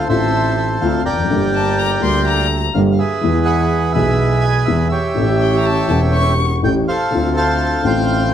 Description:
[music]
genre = tango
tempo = 124 BPM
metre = 4/4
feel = rubato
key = D minor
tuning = A4 = 440 Hz
[part]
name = bandoneon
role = melody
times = 0.0-8.3 s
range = G4 to A5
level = -19 LUFS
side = right 1 dB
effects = none
[part]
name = dark concert grand piano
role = accompaniment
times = 0.0-8.3 s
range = E1 to G#4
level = -17 LUFS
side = left 2 dB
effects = none
[part]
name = clear double bass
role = bass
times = 0.0-8.3 s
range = E1 to E2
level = -20 LUFS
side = right 2 dB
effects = none
[part]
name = rich violin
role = second line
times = 1.6-6.5 s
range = G5 to C#6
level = -21 LUFS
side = left 3 dB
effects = none
[sound]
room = wet large studio reverb, RT60 1.1 s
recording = none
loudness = -14 LUFS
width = side -9 dB against mid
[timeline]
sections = 0.0-8.3 A section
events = none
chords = 0.0 Dm7; 1.3 Gm; 3.2 E; 5.2 A7; 7.1 Dm7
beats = 0.33 0.82 | 1.30 1.79 2.27 2.76 | 3.24 3.72 4.21 4.69 | 5.17 5.66 6.14 6.63 | 7.12 7.61 8.09

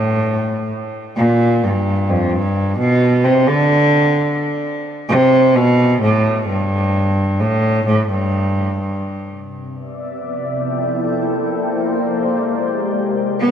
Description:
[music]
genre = IDM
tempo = free time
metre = none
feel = none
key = C major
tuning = A4 = 440 Hz
[part]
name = rich cello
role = melody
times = 0.0-9.0, 13.4-13.5 s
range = F2 to B3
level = -14 LUFS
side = equal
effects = digital delay
[part]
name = glassy FM pad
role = sustained chords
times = 9.5-13.5 s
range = C3 to G5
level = -18 LUFS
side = left 2 dB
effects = ensemble chorus, built-in reverb, vintage 12-bit sampler grit
[sound]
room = moderate lush hall reverb, RT60 2.3 s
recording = none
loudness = -14 LUFS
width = side -8 dB against mid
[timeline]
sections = 0.0-9.2 A section; 9.2-13.5 B section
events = none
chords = 0.0 N.C.; 9.2 Cmaj9; 10.2 Fmaj9; 11.1 Bbmaj9; 12.0 Abmaj9; 12.9 Cmaj9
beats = free time

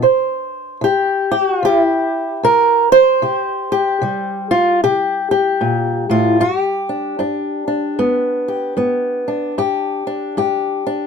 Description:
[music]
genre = acoustic country blues, solo or duo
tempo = 75 BPM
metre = 4/4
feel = swing 61% on 8ths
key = G mixolydian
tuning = A4 = 441 Hz
[part]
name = fingerpicked old ladder-braced acoustic guitar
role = solo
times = 0.0-11.1 s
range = G2 to C5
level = -14 LUFS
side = equal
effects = none
[sound]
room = light reverb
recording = close, detailed microphones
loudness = -14 LUFS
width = side -6 dB against mid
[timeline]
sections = 0.0-11.1 A section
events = none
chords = 0.0 N.C.; 3.2 C5; 6.4 G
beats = | 0.04 0.83 1.63 2.42 | 3.22 4.02 4.81 5.61 | 6.40 7.20 7.99 8.79 | 9.58 10.38

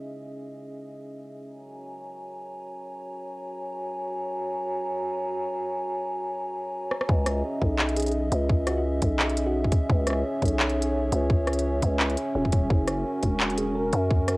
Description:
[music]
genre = half-time drum and bass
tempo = 171 BPM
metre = 4/4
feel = swing 56% on 16ths, half-time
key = C# dorian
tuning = A4 = 440 Hz
[part]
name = dark analog pad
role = sustained chords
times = 0.0-14.4 s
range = C#4 to A#5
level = -30 LUFS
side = equal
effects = chorus, sidechain pumping, cassette tape
[part]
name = organic electronic drum kit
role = drums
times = 6.9-14.4 s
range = handclaps, hi-hat, rim click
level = -28 LUFS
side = equal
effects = small room ambience, cassette tape
[part]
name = growling 808-style bass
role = bass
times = 7.1-14.4 s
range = D#1 to F#2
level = -26 LUFS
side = equal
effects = none
[part]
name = electronic kick drum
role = drums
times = 7.1-14.2 s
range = none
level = -23 LUFS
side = equal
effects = overdrive, small room ambience, cassette tape
[part]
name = soft struck synth lead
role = melody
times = 8.0-9.7, 13.6-14.0 s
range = F#4 to A#4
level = -34 LUFS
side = equal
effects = chorus, tremolo, tape echo
[sound]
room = light reverb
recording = home recording on cassette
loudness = -23 LUFS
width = side -23 dB against mid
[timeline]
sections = 0.0-7.1 A section; 7.1-14.4 B section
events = drum fill 6.9; drop 7.1-14.4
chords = 0.0 C#m; 1.5 F#; 7.1 C#m; 12.7 F#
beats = | 0.07 0.42 0.77 1.12 | 1.48 1.83 2.18 2.53 | 2.88 3.23 3.58 3.93 | 4.28 4.63 4.98 5.33 | 5.68 6.04 6.39 6.74 | 7.09 7.44 7.79 8.14 | 8.49 8.84 9.19 9.54 | 9.90 10.25 10.60 10.95 | 11.30 11.65 12.00 12.35 | 12.70 13.05 13.40 13.76 | 14.11

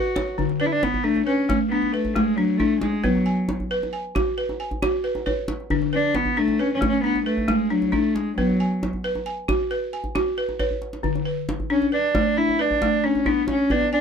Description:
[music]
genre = west african traditional, West African string and xylophone music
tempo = 90 BPM (dotted quarters)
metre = 12/8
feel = straight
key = D lydian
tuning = A4 = 440 Hz
[part]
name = dark cello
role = melody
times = 0.0-14.0 s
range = F#3 to F#4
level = -22 LUFS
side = right 1 dB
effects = none
[part]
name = balafon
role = arpeggios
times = 0.0-14.0 s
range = D3 to G#5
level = -24 LUFS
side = left 2 dB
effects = none
[part]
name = djembe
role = percussion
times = 0.2-13.9 s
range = none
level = -29 LUFS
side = equal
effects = none
[sound]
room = light reverb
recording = none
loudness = -20 LUFS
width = side -7 dB against mid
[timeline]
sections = 0.4-14.0 A section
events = drum fill 10.7-11.0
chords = 0.4 D5; 3.0 B5; 5.7 D5; 8.4 B5; 11.0 D5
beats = | 0.38 1.04 1.71 2.38 | 3.04 3.71 4.37 5.04 | 5.71 6.37 7.04 7.71 | 8.37 9.04 9.71 10.37 | 11.04 11.71 12.38 13.04 | 13.71

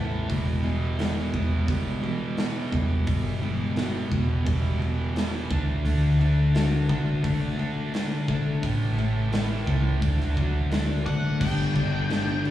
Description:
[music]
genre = quiet-loud alternative rock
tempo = 86 BPM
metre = 4/4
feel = straight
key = E minor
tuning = A4 = 439 Hz
[part]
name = picked steel-string acoustic guitar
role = arpeggios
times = 0.0-11.4 s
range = E2 to F#4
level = -31 LUFS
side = left 5 dB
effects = slapback echo
[part]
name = thick fuzz guitar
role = riff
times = 0.0-12.5 s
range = E2 to D4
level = -28 LUFS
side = right 3 dB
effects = distortion, slapback echo
[part]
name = overdriven picked electric bass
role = bass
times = 0.0-12.5 s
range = E1 to D3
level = -26 LUFS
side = equal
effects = none
[part]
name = big rock drum kit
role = drums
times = 0.3-12.5 s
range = crash cymbal, hi-hat, kick drum, snare drum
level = -30 LUFS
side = equal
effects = none
[part]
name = octave-fuzz lead guitar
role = melody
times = 11.1-12.4 s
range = F#5 to G5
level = -32 LUFS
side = left 3 dB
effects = distortion, slapback echo
[part]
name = fuzz guitar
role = riff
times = 11.4-12.5 s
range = G2 to D4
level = -29 LUFS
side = left 11 dB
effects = distortion, slapback echo
[sound]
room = little or no reverb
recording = live gig heard through the venue's PA, recital hall reverb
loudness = -23 LUFS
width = side -13 dB against mid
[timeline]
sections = 0.0-11.4 A section; 11.4-12.5 B section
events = none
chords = 0.3 Emadd9; 5.5 D; 8.6 A; 10.0 D; 11.4 G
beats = | 0.30 0.99 1.69 2.38 | 3.08 3.77 4.46 5.16 | 5.85 6.55 7.24 7.93 | 8.63 9.32 10.02 10.71 | 11.40 12.10

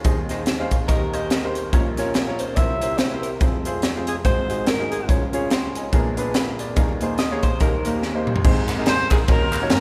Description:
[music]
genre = uptempo gospel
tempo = 143 BPM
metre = 4/4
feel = swing 59% on 8ths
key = Ab major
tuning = A4 = 440 Hz
[part]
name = clear baby grand piano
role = accompaniment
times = 0.0-9.8 s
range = F1 to C6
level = -27 LUFS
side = equal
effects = none
[part]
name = warm French horn section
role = sustained chords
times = 0.0-8.4 s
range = Eb3 to C5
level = -39 LUFS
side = equal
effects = none
[part]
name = crisp fusion drum kit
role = drums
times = 0.0-9.8 s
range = crash cymbal, hi-hat, kick drum, ride cymbal, snare drum, toms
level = -23 LUFS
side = equal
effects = none
[part]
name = clean electric guitar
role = second line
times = 0.9-1.7, 7.2-8.2 s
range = Bb4 to Eb5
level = -37 LUFS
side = equal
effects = none
[part]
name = breathy alto saxophone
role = melody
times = 2.4-5.1 s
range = Ab4 to E5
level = -31 LUFS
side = equal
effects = none
[part]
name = group handclap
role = percussion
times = 8.7-9.6 s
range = none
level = -35 LUFS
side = equal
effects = none
[part]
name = bright viola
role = melody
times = 8.9-9.8 s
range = Ab4 to C5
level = -25 LUFS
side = equal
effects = none
[sound]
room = moderate cathedral reverb, RT60 5.8 s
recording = recorded in a church or concert hall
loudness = -21 LUFS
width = mono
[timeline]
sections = 0.0-8.4 A section; 8.4-9.8 B section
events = drum fill 8.0-8.4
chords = 0.0 Ab/Eb; 0.9 Eb; 1.7 Bbm; 2.6 C7; 3.4 Fm; 4.2 Ab7; 5.1 Db; 5.9 Bb7b9; 6.8 Ebsus4; 7.6 Eb; 8.4 Ab; 9.3 Ebm7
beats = | 0.05 0.47 0.89 1.31 | 1.73 2.15 2.57 2.99 | 3.41 3.83 4.25 4.67 | 5.09 5.51 5.93 6.35 | 6.77 7.18 7.60 8.02 | 8.44 8.86 9.28 9.70

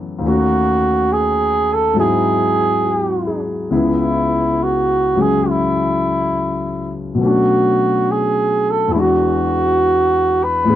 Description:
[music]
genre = jazz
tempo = 69 BPM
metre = 4/4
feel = swing 68% on 8ths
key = unclear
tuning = A4 = 443 Hz
[part]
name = warm concert grand piano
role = accompaniment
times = 0.0-10.8 s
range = C#2 to A4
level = -18 LUFS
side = left 2 dB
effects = none
[part]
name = growling trumpet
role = melody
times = 0.3-10.8 s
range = E4 to B4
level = -16 LUFS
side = right 2 dB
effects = none
[sound]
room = moderate studio reverb, RT60 0.6 s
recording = dry, close 1970s-style studio recording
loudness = -14 LUFS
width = side -12 dB against mid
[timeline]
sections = 0.0-10.8 A section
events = none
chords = 0.2 D#m7b5; 2.0 G#7b13; 3.7 C#m7; 7.2 Bm9; 8.9 E9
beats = | 0.23 1.10 1.97 2.84 | 3.71 4.58 5.46 6.33 | 7.20 8.07 8.94 9.80 | 10.67

